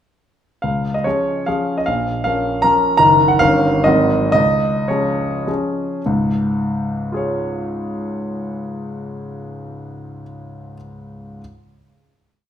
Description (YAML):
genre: classical, romantic triple-time dance for piano with dotted rhythms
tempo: 100-168 BPM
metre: 3/4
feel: rubato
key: Db major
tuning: A4 = 441 Hz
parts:
  - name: clear grand piano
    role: solo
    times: 0.6-11.4 s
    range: Gb1 to Bb5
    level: -16 LUFS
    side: equal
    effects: none
room: moderate recital hall reverb, RT60 1.6 s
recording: minimal, uncompressed stereo recording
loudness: -15 LUFS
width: side -9 dB against mid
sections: 0.6-6.1 A section; 6.1-9.3 final chord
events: slowing down 2.4-6.1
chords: 0.6 Db; 1.9 Bbm; 3.0 Ebm/Gb; 3.4 Eb7/G; 3.9 Ab9; 4.3 Db